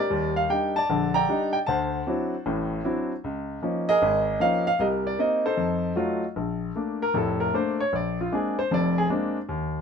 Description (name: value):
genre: solo jazz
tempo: 154 BPM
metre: 4/4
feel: swing 64% on 8ths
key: Bb major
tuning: A4 = 440 Hz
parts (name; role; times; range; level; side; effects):
- clear grand piano; solo; 0.0-9.8 s; F1 to Bb5; -23 LUFS; left 1 dB; none
room: light reverb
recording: minimal, uncompressed stereo recording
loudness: -23 LUFS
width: side -6 dB against mid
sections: 0.0-6.4 A section; 6.4-9.8 B section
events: grand piano solo 6.4-9.8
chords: 0.1 Ebmaj7; 1.7 D9; 3.2 Db69; 4.8 Cm7; 5.6 F7b9; 6.4 Bbmaj7; 7.9 Bb9